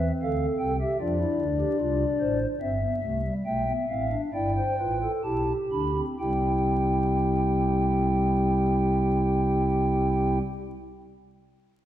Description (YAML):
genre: classical, baroque-style 4-part fugue for pipe organ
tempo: 62-78 BPM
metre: 4/4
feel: straight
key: C major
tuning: A4 = 440 Hz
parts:
  - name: pipe organ, stopped flute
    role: solo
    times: 0.0-10.4 s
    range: G1 to B5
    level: -23 LUFS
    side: equal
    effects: none
room: wet concert hall reverb, RT60 1.9 s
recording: vinyl crackle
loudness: -23 LUFS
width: side -12 dB against mid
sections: 0.0-6.2 A section; 6.2-10.0 B section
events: slowing down 0.0-6.2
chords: 0.0 C; 1.0 Dm7; 2.6 G7; 6.2 C